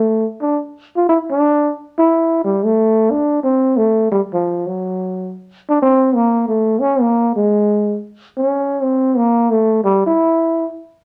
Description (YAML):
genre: jazz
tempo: 178 BPM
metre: 4/4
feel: swing 64% on 8ths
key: unclear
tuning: A4 = 441 Hz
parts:
  - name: breathy trombone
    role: solo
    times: 0.0-10.7 s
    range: F3 to F4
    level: -16 LUFS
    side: equal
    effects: none
room: moderate studio reverb, RT60 0.7 s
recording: none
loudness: -16 LUFS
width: mono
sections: 0.0-5.4 A section; 5.4-11.0 B section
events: none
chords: none